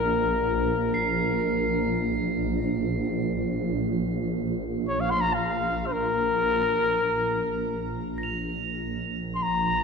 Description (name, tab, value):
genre	world meditative, free-time meditation music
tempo	free time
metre	none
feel	none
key	unclear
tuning	A4 = 438 Hz
part	growling trumpet	melody	0.0-9.8 s	Bb4 to C6	-25 LUFS	left 3 dB	shimmer reverb
part	swarming drone	drone	0.0-9.8 s	Bb1	-27 LUFS	right 2 dB	built-in reverb
part	crotales	texture	0.9-9.8 s	Bb6 to F7	-34 LUFS	right 5 dB	shimmer reverb
room	wet lush hall reverb, RT60 1.8 s, studio ambience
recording	dark, warm production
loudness	-24 LUFS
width	side -5 dB against mid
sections	0.0-8.1 A section; 8.1-9.8 A section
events	none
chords	none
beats	free time